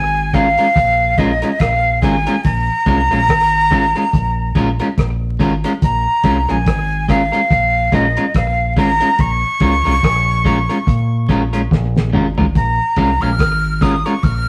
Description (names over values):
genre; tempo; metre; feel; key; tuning
roots reggae; 71 BPM; 4/4; swing 58% on 16ths; Bb minor; A4 = 437 Hz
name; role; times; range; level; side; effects
breathy bright jazz flute; melody; 0.0-14.5 s; Eb5 to F6; -19 LUFS; equal; slapback echo
deep dub fingered electric bass; bass; 0.0-14.5 s; Ab1 to Bb2; -22 LUFS; equal; none
electric guitar at the edge of break-up; accompaniment; 0.3-14.1 s; Ab3 to Bb4; -21 LUFS; equal; none
cloth-damped thuddy drum kit; drums; 0.3-14.5 s; hi-hat, kick drum, rim click, snare drum, toms; -19 LUFS; equal; none
room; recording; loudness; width
moderate studio reverb, RT60 0.6 s; rough rehearsal-room recording, vinyl crackle; -15 LUFS; mono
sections
0.0-14.5 A section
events
drum fill 11.7-12.6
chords
0.0 Bbm7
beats
0.76 1.60 | 2.45 3.29 4.14 4.98 | 5.82 6.67 7.51 8.35 | 9.19 10.03 10.87 11.71 | 12.55 13.39 14.23